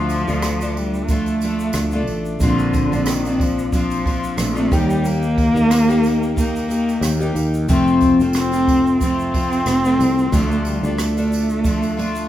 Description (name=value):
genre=acoustic pop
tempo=91 BPM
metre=4/4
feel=swing 55% on 16ths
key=unclear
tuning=A4 = 440 Hz
part: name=rich cello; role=melody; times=0.0-12.3 s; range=D3 to C4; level=-20 LUFS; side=right 1 dB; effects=none
part: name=picked twelve-string acoustic guitar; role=accompaniment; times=0.0-12.3 s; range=F2 to G4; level=-20 LUFS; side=left 2 dB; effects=none
part: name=sustaining fretless electric bass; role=bass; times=0.0-12.3 s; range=F1 to Eb2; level=-23 LUFS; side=right 1 dB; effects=none
part: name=jazz brush drum kit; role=drums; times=0.1-12.3 s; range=kick drum, rim click, shaker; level=-24 LUFS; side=right 1 dB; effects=none
part: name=tambourine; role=percussion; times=0.1-12.3 s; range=none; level=-36 LUFS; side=right 6 dB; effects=none
room=moderate recital hall reverb, RT60 1.5 s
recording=recorded in a church or concert hall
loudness=-16 LUFS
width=side -12 dB against mid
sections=0.0-12.3 A section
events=none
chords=0.0 Dm; 2.4 Bbadd9; 4.7 Eb; 7.7 F; 10.3 Dm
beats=0.43 1.09 1.75 | 2.41 3.07 3.73 4.39 | 5.05 5.71 6.37 7.03 | 7.69 8.35 9.01 9.67 | 10.33 10.99 11.65